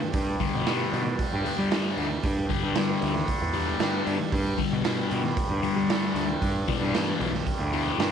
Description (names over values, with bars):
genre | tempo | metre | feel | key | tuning
psychedelic rock | 115 BPM | 4/4 | straight | G major | A4 = 440 Hz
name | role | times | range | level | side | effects
tanpura | drone | 0.0-8.1 s | G2 to G3 | -32 LUFS | right 1 dB | stereo widening
fuzz picked electric bass | bass | 0.1-8.1 s | B1 to G3 | -29 LUFS | right 1 dB | overdrive
raw garage drum kit | drums | 0.1-8.1 s | hi-hat, kick drum, snare drum | -29 LUFS | right 4 dB | none
thick fuzz guitar | riff | 0.4-8.1 s | E2 to G3 | -29 LUFS | left 11 dB | distortion, phaser
room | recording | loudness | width
light reverb, studio reverb | 1960s-style stereo | -24 LUFS | side -8 dB against mid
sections
0.0-8.1 A section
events
none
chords
0.0 G; 6.4 Em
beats
| 0.14 0.66 1.18 1.71 | 2.23 2.75 3.27 3.80 | 4.32 4.84 5.37 5.89 | 6.41 6.93 7.46 7.98